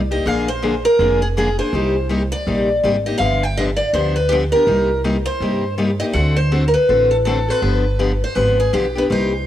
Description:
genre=acoustic string swing (jazz manouche)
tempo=163 BPM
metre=4/4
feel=swing 62% on 8ths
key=C minor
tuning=A4 = 445 Hz
part: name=upright bass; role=bass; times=0.0-9.5 s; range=F1 to G2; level=-21 LUFS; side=equal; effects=none
part: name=picked steel-string acoustic guitar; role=melody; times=0.1-9.5 s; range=G4 to G5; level=-18 LUFS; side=equal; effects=none
part: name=picked steel-string acoustic guitar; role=accompaniment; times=0.1-9.3 s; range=C3 to A4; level=-21 LUFS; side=left 2 dB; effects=cassette tape
room=light reverb, small room ambience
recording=home recording on cassette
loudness=-15 LUFS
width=side -12 dB against mid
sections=0.0-9.5 A section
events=none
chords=0.3 Bb7; 1.7 Cm7; 3.2 G7; 4.7 Cm7; 6.2 D7; 7.6 G7

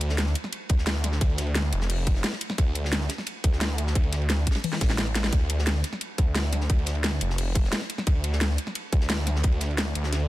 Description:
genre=dark technical drum and bass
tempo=175 BPM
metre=4/4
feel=straight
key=D minor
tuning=A4 = 440 Hz
part: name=snarling distorted saw bass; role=bass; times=0.0-10.3 s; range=F1 to D2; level=-26 LUFS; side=equal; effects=overdrive, sidechain pumping
part: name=drum and bass drum kit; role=drums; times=0.0-10.2 s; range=hi-hat, snare drum, toms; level=-29 LUFS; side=equal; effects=overdrive
part: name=warm soul drum kit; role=drums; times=0.0-10.2 s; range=hi-hat, ride cymbal, snare drum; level=-37 LUFS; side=right 1 dB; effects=high-pass filter on cymbals, high-pass filter on hats, high-pass filter on snare, high-pass filter on room
part: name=electronic kick drum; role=drums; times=0.7-9.5 s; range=none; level=-23 LUFS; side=equal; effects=overdrive
room=small room ambience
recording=dense, heavily limited modern master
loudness=-23 LUFS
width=side -16 dB against mid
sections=0.0-10.3 A section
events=drum fill 4.6-5.3; kick drops out 5.0-5.3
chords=none

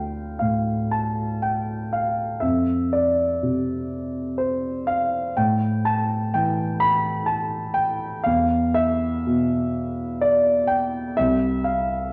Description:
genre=classical, impressionist solo piano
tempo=62 BPM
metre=3/4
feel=uneven beats, rubato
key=D dorian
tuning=A4 = 436 Hz
part: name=warm concert grand piano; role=solo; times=0.0-12.1 s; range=C2 to B5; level=-23 LUFS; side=equal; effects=none
room=wet recital hall reverb, RT60 1.4 s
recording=worn, warbling old tape, cassette tape, warbly pitch drift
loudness=-23 LUFS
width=mono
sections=0.0-12.1 A section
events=none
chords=0.0 D5; 2.4 F5; 5.4 A5; 8.3 E5; 11.2 C5

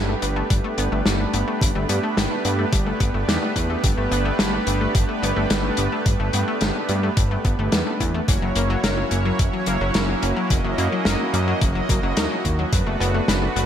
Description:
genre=synthwave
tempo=108 BPM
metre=4/4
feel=straight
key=G major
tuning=A4 = 440 Hz
part: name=soft supersaw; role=sustained chords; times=0.0-13.7 s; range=A3 to Eb5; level=-25 LUFS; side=right 2 dB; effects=sidechain pumping
part: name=analog pluck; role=arpeggios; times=0.0-13.7 s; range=E3 to B4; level=-27 LUFS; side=left 4 dB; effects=chorus, cassette tape, tape echo
part: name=fat analog bass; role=bass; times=0.0-13.7 s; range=F#1 to G2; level=-24 LUFS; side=equal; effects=tube saturation
part: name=warm soul drum kit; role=drums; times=0.2-13.7 s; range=hi-hat, snare drum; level=-25 LUFS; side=left 1 dB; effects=gated reverb
part: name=electronic kick drum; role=drums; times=0.5-12.8 s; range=none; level=-22 LUFS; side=equal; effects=overdrive
room=light reverb, studio ambience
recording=none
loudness=-19 LUFS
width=side -9 dB against mid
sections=0.0-13.7 A section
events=none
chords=0.0 Gadd9; 8.3 F#7; 12.7 Bm7/F#

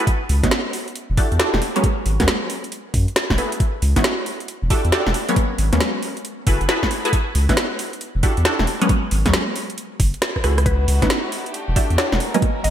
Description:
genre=UK garage, two-step garage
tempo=136 BPM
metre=4/4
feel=swing 64% on 16ths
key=C# minor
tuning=A4 = 440 Hz
part: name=punchy chord stab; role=stabs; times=0.0-12.4 s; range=F#3 to B4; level=-23 LUFS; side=equal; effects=chorus, phaser, digital delay
part: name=electronic kick drum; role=drums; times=0.1-12.5 s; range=none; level=-20 LUFS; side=equal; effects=overdrive
part: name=garage drum kit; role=drums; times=0.1-12.7 s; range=hi-hat, rim click, snare drum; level=-23 LUFS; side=equal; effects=overdrive, gated reverb
part: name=saturated sub bass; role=bass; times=0.3-12.7 s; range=E1 to F#2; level=-19 LUFS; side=equal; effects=tube saturation
part: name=mallet-like synth pluck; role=melody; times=10.7-12.7 s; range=B4 to D#5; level=-27 LUFS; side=left 4 dB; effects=chorus, phaser, digital delay
part: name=dark chamber violin section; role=sustained chords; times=10.7-12.7 s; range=A3 to A#4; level=-30 LUFS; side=left 1 dB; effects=sidechain pumping
room=moderate lush hall reverb, RT60 1.6 s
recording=bright 1980s-style digital production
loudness=-17 LUFS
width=side -10 dB against mid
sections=0.0-12.7 A section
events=drum fill 10.2-10.7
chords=0.1 C#m11; 1.0 Em11; 1.6 G#m11; 2.7 F#m11; 3.6 C#m11; 4.5 Em11; 5.1 G#m11; 6.2 F#m11; 7.1 C#m11; 8.0 Em11; 8.7 G#m11; 9.8 F#m11; 10.7 C#m11; 11.5 Em11

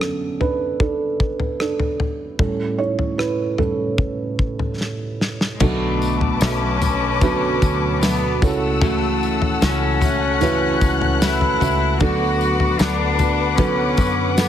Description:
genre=pop ballad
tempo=75 BPM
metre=4/4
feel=straight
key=B minor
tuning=A4 = 440 Hz
part: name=felt-muted upright piano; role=accompaniment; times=0.0-14.5 s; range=A2 to C#5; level=-23 LUFS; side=right 4 dB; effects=none
part: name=damped 70s drum kit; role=drums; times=0.0-14.5 s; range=crash cymbal, kick drum, rim click, snare drum, toms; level=-21 LUFS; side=left 1 dB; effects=none
part: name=clear studio cello section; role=second line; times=5.5-14.5 s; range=G#3 to F#4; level=-23 LUFS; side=left 2 dB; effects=none
part: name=muted studio string section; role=sustained chords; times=5.6-14.5 s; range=A4 to F#6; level=-25 LUFS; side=left 6 dB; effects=none
part: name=nylon-string guitar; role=arpeggios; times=5.6-14.5 s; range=B2 to A4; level=-25 LUFS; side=equal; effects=none
part: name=fingered electric bass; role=bass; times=5.6-14.5 s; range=B1 to F#2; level=-24 LUFS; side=left 1 dB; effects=none
part: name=tambourine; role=percussion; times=5.6-14.5 s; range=none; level=-35 LUFS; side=left 6 dB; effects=none
room=moderate plate reverb, RT60 1.8 s, small room ambience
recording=heavily compressed radio sound, multiband compression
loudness=-17 LUFS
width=side -10 dB against mid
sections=0.0-5.6 A section; 5.6-14.5 B section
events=felt piano solo 0.0-5.6; drum fill 4.8-5.6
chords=0.0 D6; 2.4 A7; 5.6 Bm7; 8.4 F#m7/C#; 12.0 D6

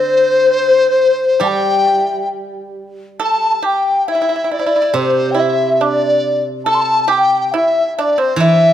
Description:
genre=chinese traditional, Chinese chamber ensemble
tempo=69 BPM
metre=4/4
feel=rubato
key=G zhi mode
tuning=A4 = 440 Hz
part: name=mellow hollow large dizi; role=melody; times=0.0-8.7 s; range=C5 to A5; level=-15 LUFS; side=equal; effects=none
part: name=breathy low xiao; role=second line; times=0.0-8.7 s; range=C5 to C6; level=-17 LUFS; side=left 5 dB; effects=none
part: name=pipa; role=second line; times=0.0-8.7 s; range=C4 to A4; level=-21 LUFS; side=right 5 dB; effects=none
part: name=steel-string zither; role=accompaniment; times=0.0-8.7 s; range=C3 to G3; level=-20 LUFS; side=right 3 dB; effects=none
room=moderate scoring stage reverb, RT60 1.6 s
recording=none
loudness=-12 LUFS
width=side -10 dB against mid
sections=0.0-3.2 A section; 3.2-8.7 B section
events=none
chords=none

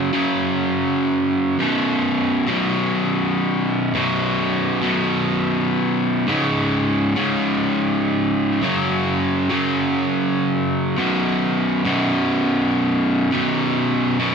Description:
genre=rock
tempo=102 BPM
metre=4/4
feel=straight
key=unclear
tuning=A4 = 441 Hz
part: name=distorted electric guitar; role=solo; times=0.0-14.3 s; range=B1 to F#3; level=-17 LUFS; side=equal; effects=distortion, analog delay
room=moderate large studio reverb, RT60 0.8 s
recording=none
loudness=-17 LUFS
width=side -6 dB against mid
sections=0.0-14.3 A section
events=none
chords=0.0 F#5; 1.6 B5; 6.3 C#5; 8.6 F#5; 11.0 B5

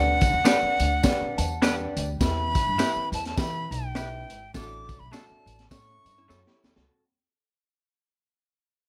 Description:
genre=uptempo 1960s-style soul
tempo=103 BPM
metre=4/4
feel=swing 58% on 8ths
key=unclear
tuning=A4 = 435 Hz
part: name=breathy bright silver concert flute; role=melody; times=0.0-6.6 s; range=F#5 to D6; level=-30 LUFS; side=equal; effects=none
part: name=warm upright piano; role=accompaniment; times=0.0-6.7 s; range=A2 to A5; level=-34 LUFS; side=equal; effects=none
part: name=upright bass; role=bass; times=0.0-6.9 s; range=G#1 to E3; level=-33 LUFS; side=equal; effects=none
part: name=crunchy breakbeat drum kit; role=drums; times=0.2-6.9 s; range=hi-hat, kick drum, snare drum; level=-29 LUFS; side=equal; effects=none
part: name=tambourine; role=percussion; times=0.2-6.8 s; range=none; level=-41 LUFS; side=equal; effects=none
part: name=twangy electric guitar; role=stabs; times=0.4-6.4 s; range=A3 to B4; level=-32 LUFS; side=equal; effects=none
part: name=warm saxophone section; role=second line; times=4.5-5.0 s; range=F#3 to A4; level=-53 LUFS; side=equal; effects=none
part: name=archtop guitar, miked and amplified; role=riff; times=6.2-7.0 s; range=C#4 to A4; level=-72 LUFS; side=equal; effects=none
room=little or no reverb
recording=none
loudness=-25 LUFS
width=mono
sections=0.0-6.9 A section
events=fade-out 0.0-6.9; upright piano fill 1.0-2.2; band accent 4.5-6.9; drum fill 6.3-6.9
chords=0.0 G/D; 2.2 Em; 4.5 D/A; 5.7 A

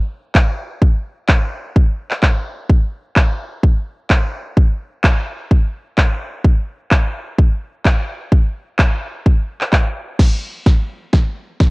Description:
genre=pop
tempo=128 BPM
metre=4/4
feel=straight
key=none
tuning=none
part: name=house drum kit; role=drums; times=0.3-11.7 s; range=crash cymbal, handclaps, kick drum, snare drum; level=-13 LUFS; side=equal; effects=none
room=little or no reverb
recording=worn, warbling old tape, cassette tape, warbly pitch drift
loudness=-15 LUFS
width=side -28 dB against mid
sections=0.0-10.2 A section; 10.2-11.7 B section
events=build-up 10.2-11.7; drum fill 10.2-11.7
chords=none

